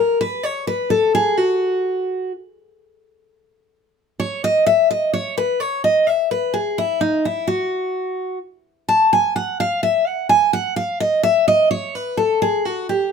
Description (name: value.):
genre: bluegrass.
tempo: 128 BPM.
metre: 3/4.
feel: straight.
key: unclear.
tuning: A4 = 441 Hz.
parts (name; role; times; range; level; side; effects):
picked steel-string acoustic guitar; solo; 0.0-13.1 s; D#4 to A5; -16 LUFS; left 1 dB; none.
room: moderate studio ambience, RT60 0.5 s.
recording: none.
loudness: -16 LUFS.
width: side -6 dB against mid.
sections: 0.0-3.3 A section; 3.3-13.1 A section.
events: steel-string acoustic guitar solo 0.0-3.3, 3.3-13.1.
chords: none.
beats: | 0.43 0.91 1.38 | 1.84 2.31 2.78 | 3.25 3.72 4.19 | 4.66 5.13 5.60 | 6.07 6.54 7.01 | 7.48 7.95 8.42 | 8.89 9.36 9.83 | 10.30 10.77 11.24 | 11.71 12.18 12.65.